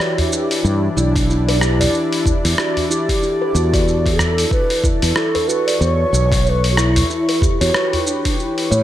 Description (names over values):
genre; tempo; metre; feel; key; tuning
organic downtempo; 93 BPM; 4/4; swing 59% on 16ths; E dorian; A4 = 440 Hz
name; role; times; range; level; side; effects
mellow hollow bass bansuri; melody; 0.0-8.8 s; D4 to C#5; -21 LUFS; equal; digital delay
warm analog pad; sustained chords; 0.0-8.8 s; E3 to C#6; -24 LUFS; left 1 dB; chorus, sidechain pumping
dusty soul sampler-style drum kit; drums; 0.0-8.8 s; hi-hat, rim click, shaker; -22 LUFS; equal; none
udu; percussion; 0.2-8.0 s; none; -23 LUFS; equal; none
fretless electric bass; bass; 0.6-8.8 s; B1 to A2; -17 LUFS; equal; wide subtle chorus, sidechain pumping
steel tongue drum; arpeggios; 1.0-8.8 s; E4 to D5; -22 LUFS; equal; digital delay
electronic kick drum; drums; 1.2-8.4 s; none; -20 LUFS; equal; none
room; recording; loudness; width
light reverb, digital ambience; none; -14 LUFS; side -12 dB against mid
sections
0.0-8.8 A section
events
none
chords
0.0 Em7; 1.9 D/E; 4.5 Bm7/E; 7.1 A7/E